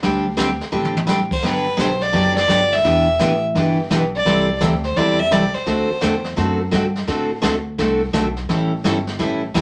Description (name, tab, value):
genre	country, western swing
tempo	170 BPM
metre	4/4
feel	swing 64% on 8ths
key	G major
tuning	A4 = 440 Hz
part	picked steel-string acoustic guitar	accompaniment	0.0-9.6 s	C3 to A4	-22 LUFS	equal	none
part	upright bass	bass	0.0-9.6 s	E1 to A2	-28 LUFS	equal	none
part	jazz brush drum kit	drums	0.0-9.6 s	brushed snare drum, crash cymbal, hi-hat, kick drum, snare drum, toms	-29 LUFS	equal	none
part	clear fiddle	melody	1.3-6.2 s	B4 to E5	-21 LUFS	equal	none
room	wet studio reverb, RT60 0.5 s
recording	none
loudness	-19 LUFS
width	mono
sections	0.0-1.4 A section; 1.4-9.6 B section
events	drum fill 0.7-1.1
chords	0.0 D7sus4; 1.4 Gmaj7; 2.8 Em7; 4.3 C6; 5.7 D7; 8.5 A7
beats	| 0.02 0.37 0.73 1.08 | 1.43 1.78 2.14 2.49 | 2.84 3.19 3.55 3.90 | 4.25 4.61 4.96 5.31 | 5.67 6.02 6.37 6.72 | 7.08 7.43 7.78 8.14 | 8.49 8.84 9.19 9.55